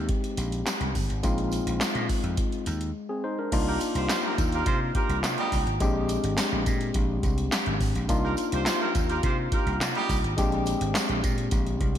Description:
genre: early-eighties boogie funk.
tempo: 105 BPM.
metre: 4/4.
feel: straight.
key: C minor.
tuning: A4 = 440 Hz.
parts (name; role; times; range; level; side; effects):
overdriven tine electric piano; accompaniment; 0.0-12.0 s; Ab3 to C5; -30 LUFS; left 3 dB; slapback echo.
vintage slap bass; bass; 0.0-12.0 s; G1 to C3; -29 LUFS; equal; none.
electro analog drum machine; drums; 0.1-12.0 s; crash cymbal, handclaps, hi-hat, kick drum, snare drum; -28 LUFS; equal; none.
tambourine; percussion; 0.4-11.7 s; none; -41 LUFS; right 9 dB; none.
warm horn section; second line; 3.7-10.2 s; G3 to C5; -31 LUFS; right 2 dB; tape echo, slapback echo.
room: light reverb.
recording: none.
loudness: -24 LUFS.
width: side -10 dB against mid.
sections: 0.0-3.5 A section; 3.5-12.0 B section.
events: break 3.0-3.5.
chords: 0.0 Fm7 (rootless); 1.2 Bb9sus4; 3.5 Cm11; 5.8 Bb13; 8.1 Cm11; 10.4 Bb13.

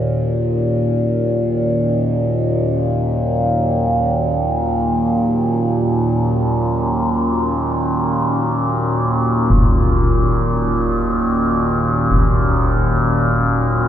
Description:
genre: dark ambient drone.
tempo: free time.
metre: none.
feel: none.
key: Eb minor.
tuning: A4 = 438 Hz.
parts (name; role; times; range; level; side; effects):
deep dark ambient pad; sustained chords; 0.0-13.9 s; Eb3 to B4; -24 LUFS; left 1 dB; chorus, built-in reverb.
overtone-sweeping drone; drone; 0.0-13.9 s; Eb2 to Bb2; -16 LUFS; equal; chorus, built-in reverb.
concert bass drum; percussion; 9.5-12.4 s; none; -19 LUFS; equal; low-pass filter on kick.
room: wet cathedral reverb, RT60 6.6 s.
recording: in a vast, echoing space.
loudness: -15 LUFS.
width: side -10 dB against mid.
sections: 0.0-13.9 A section.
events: fade-in on ambient pad 0.0-13.9.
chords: 0.0 Ebm; 9.5 Bmaj9/D#.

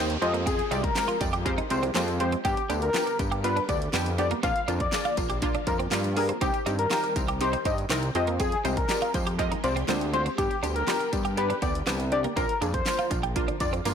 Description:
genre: dance-pop.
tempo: 121 BPM.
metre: 4/4.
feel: straight.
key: unclear.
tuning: A4 = 442 Hz.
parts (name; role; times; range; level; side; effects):
punchy chord stab; accompaniment; 0.0-13.9 s; Ab3 to Eb5; -31 LUFS; right 1 dB; chorus, sidechain pumping.
phased string machine; sustained chords; 0.0-13.9 s; D3 to G4; -39 LUFS; equal; ensemble chorus, phaser, sidechain pumping.
twelve-string electric guitar; riff; 0.0-13.9 s; Bb3 to G4; -34 LUFS; right 6 dB; analog chorus.
fat analog bass; bass; 0.0-13.9 s; G1 to G2; -30 LUFS; equal; sidechain pumping.
downlifter; sound effects; 0.0-2.5 s; none; -41 LUFS; right 1 dB; none.
pop drum kit; drums; 0.1-13.9 s; handclaps, hi-hat, kick drum, snare drum; -31 LUFS; equal; soft clipping on snare.
wide unison lead; melody; 0.2-13.7 s; G4 to F5; -29 LUFS; left 3 dB; sidechain pumping, ping-pong delay.
tambourine; percussion; 0.2-13.9 s; none; -43 LUFS; left 15 dB; none.
room: light reverb, digital ambience.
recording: blown-out, overdriven recording, overdrive.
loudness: -24 LUFS.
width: side -7 dB against mid.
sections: 0.0-13.9 A section.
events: none.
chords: 0.2 Fmadd9; 2.5 G; 4.4 Bb; 6.4 Cm; 8.2 Fmadd9; 10.4 G; 12.4 Bb.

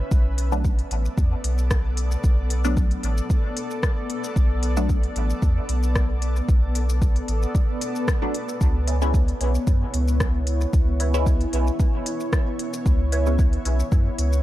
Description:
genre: dub techno.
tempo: 113 BPM.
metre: 4/4.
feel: swing 53% on 16ths.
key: unclear.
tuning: A4 = 440 Hz.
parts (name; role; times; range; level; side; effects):
granular cloud pad; sustained chords; 0.0-14.4 s; B3 to D5; -30 LUFS; left 1 dB; built-in reverb, sidechain pumping.
filtered dub chord stab; stabs; 0.0-5.0, 8.2-13.5 s; F#3 to E4; -31 LUFS; equal; phaser, sidechain pumping, dub echo.
soft dub sub bass; bass; 0.0-14.4 s; A1 to F#2; -22 LUFS; equal; sidechain pumping.
deep house drum kit; drums; 0.1-14.4 s; hi-hat, rim click, shaker; -32 LUFS; left 1 dB; studio reverb.
electronic kick drum; drums; 0.1-14.0 s; none; -20 LUFS; equal; studio reverb.
filtered dub chord stab; riff; 8.9-13.8 s; B4 to G#5; -34 LUFS; right 4 dB; phaser, ensemble chorus, cassette tape, sidechain pumping, dub echo.
room: digital ambience.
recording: dark, warm production.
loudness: -20 LUFS.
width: side -15 dB against mid.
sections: 0.0-14.4 A section.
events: filter sweep on synth stab 0.0-14.4.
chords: 0.1 Bm7; 8.6 C#m7.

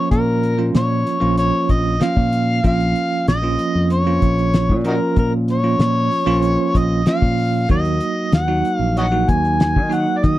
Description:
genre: straight-eighth soul blues.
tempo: 95 BPM.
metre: 4/4.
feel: straight.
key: Bb minor.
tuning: A4 = 440 Hz.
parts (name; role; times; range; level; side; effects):
overdriven harmonica; melody; 0.0-10.4 s; Eb4 to Ab5; -21 LUFS; left 1 dB; none.
bell-like tine electric piano; accompaniment; 0.0-10.4 s; F3 to Gb4; -20 LUFS; right 3 dB; fast stereo tremolo.
fingered electric bass; bass; 0.1-10.4 s; Bb1 to Eb3; -20 LUFS; left 1 dB; none.
cloth-damped thuddy drum kit; drums; 0.1-10.4 s; hi-hat, kick drum, snare drum; -18 LUFS; left 1 dB; none.
room: small room ambience.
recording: dry, close 1970s-style studio recording.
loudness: -15 LUFS.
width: side -15 dB against mid.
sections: 0.0-10.4 A section.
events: none.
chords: 0.0 Bbm; 7.7 Ebm.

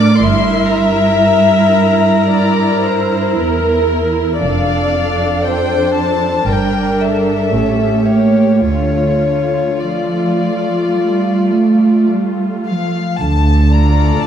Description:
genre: classical, slow romantic movement for string orchestra.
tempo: 52-60 BPM.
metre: 4/4.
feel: rubato.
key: D minor.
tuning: A4 = 439 Hz.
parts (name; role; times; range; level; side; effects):
warm chamber violin section; melody; 0.0-14.3 s; C#5 to D6; -20 LUFS; left 5 dB; none.
warm chamber violin section; second line; 0.0-14.3 s; F4 to E5; -18 LUFS; left 2 dB; none.
rich symphonic viola section; accompaniment; 0.0-14.3 s; A3 to Bb4; -19 LUFS; right 2 dB; none.
warm chamber cello section; bass; 0.0-14.3 s; E2 to A3; -15 LUFS; right 2 dB; none.
rich chamber double bass section; bass; 0.2-14.3 s; F1 to D2; -17 LUFS; right 1 dB; none.
room: wet scoring stage reverb, RT60 1.9 s.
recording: dark, warm production.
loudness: -11 LUFS.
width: side -8 dB against mid.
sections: 0.0-13.2 A section; 13.2-14.3 B section.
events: none.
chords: 0.2 Edim/G; 4.4 Dm/F; 6.5 Em7b5/G; 7.5 A7b9; 8.6 Dm.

